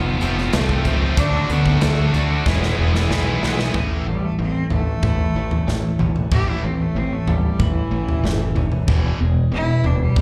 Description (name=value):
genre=quiet-loud alternative rock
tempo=93 BPM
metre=4/4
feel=straight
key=unclear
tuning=A4 = 440 Hz
part: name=clear cello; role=melody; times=0.0-10.2 s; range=E3 to G4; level=-30 LUFS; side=equal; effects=none
part: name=twelve-string electric guitar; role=arpeggios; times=0.0-10.2 s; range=E2 to F#4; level=-33 LUFS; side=equal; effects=phaser
part: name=scooped high-gain guitar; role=riff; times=0.0-3.7 s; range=D3 to F#4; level=-27 LUFS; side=equal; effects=distortion
part: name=growling fingered electric bass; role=bass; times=0.0-10.2 s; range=E1 to D2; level=-23 LUFS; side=equal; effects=overdrive
part: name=cranked stack guitar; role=riff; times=0.2-10.2 s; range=E2 to E4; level=-26 LUFS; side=equal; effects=overdrive, slapback echo
part: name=big rock drum kit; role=drums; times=0.2-10.2 s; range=hi-hat, kick drum, snare drum, toms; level=-25 LUFS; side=equal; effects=none
room=little or no reverb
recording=live gig heard through the venue's PA, club reverb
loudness=-19 LUFS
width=mono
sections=0.0-3.7 A section; 3.7-10.2 B section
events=drum fill 2.5-3.7; cello solo 3.7-10.2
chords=0.0 F; 1.2 D; 2.5 E; 3.7 A; 8.9 E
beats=0.54 | 1.18 1.82 2.46 3.11 | 3.75 4.39 5.04 5.68 | 6.32 6.96 7.61 8.25 | 8.89 9.53 10.17